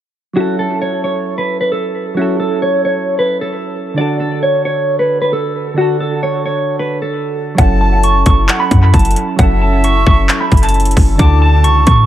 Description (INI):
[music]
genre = hip hop, trap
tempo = 133 BPM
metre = 4/4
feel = half-time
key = F# minor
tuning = A4 = 441 Hz
[part]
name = soft electric-piano-like synth keys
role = accompaniment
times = 0.3-12.1 s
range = D3 to A4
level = -20 LUFS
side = right 2 dB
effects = chorus, analog delay
[part]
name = mellow electric guitar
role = melody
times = 0.4-12.1 s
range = F#4 to D6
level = -16 LUFS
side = right 1 dB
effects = phaser, analog delay
[part]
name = silver concert flute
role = second line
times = 7.6-12.1 s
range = E5 to A5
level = -21 LUFS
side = left 4 dB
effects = analog delay
[part]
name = warbly tape-like pad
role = sustained chords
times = 7.6-12.1 s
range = D3 to A4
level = -23 LUFS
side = right 2 dB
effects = chorus, built-in reverb
[part]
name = clean 808-style bass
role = bass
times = 7.6-12.1 s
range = F#1 to A2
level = -12 LUFS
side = equal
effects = none
[part]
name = trap drum kit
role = drums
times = 7.6-12.0 s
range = handclaps, hi-hat, kick drum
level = -12 LUFS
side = equal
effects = overdrive
[sound]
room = digital ambience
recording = echo-heavy mix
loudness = -11 LUFS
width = side -12 dB against mid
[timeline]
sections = 0.4-7.6 A section; 7.6-12.1 B section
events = none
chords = 0.4 F#m7; 4.0 D; 7.6 F#m7; 11.2 D